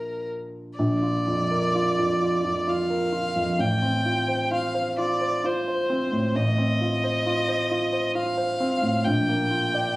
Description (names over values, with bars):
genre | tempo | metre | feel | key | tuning
classical, romantic duo for violin and grand piano | 65 BPM | 3/4 | rubato | Bb major | A4 = 440 Hz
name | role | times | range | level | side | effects
clear violin | melody | 0.0-10.0 s | Bb4 to G5 | -26 LUFS | equal | none
warm grand piano | accompaniment | 0.0-10.0 s | A1 to D5 | -24 LUFS | equal | none
room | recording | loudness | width
light reverb | recorded on a phone in the room, club reverb | -22 LUFS | side -19 dB against mid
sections
0.8-10.0 A section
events
none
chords
0.0 Bb; 3.6 F/A; 9.1 Bb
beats
| 0.79 1.75 2.67 | 3.59 4.52 5.44 | 6.36 7.27 8.16 | 9.06